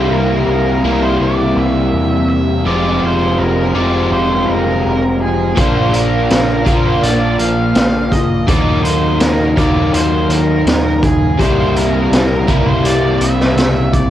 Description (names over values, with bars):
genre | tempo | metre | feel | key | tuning
rock, shoegaze and dream pop | 82 BPM | 4/4 | straight | unclear | A4 = 437 Hz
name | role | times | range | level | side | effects
octave-fuzz lead guitar | melody | 0.0-14.1 s | Ab4 to F5 | -21 LUFS | right 1 dB | distortion, cassette tape, analog delay
crunchy overdriven guitar | riff | 0.0-14.1 s | F2 to F4 | -14 LUFS | equal | analog chorus
deep dub picked electric bass | bass | 0.0-14.1 s | F1 to E2 | -19 LUFS | equal | none
raw garage drum kit | drums | 5.6-14.1 s | hi-hat, kick drum, snare drum | -16 LUFS | equal | cassette tape
room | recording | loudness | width
light reverb, small room ambience | home recording on cassette | -11 LUFS | side -12 dB against mid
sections
0.0-14.1 A section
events
none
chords
0.0 C7; 2.7 Fm; 5.6 Bb; 8.5 Ebm; 11.4 C7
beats
0.47 1.20 1.93 | 2.66 3.39 4.11 4.84 | 5.57 6.30 7.02 7.75 | 8.48 9.21 9.93 10.66 | 11.39 12.11 12.84 13.57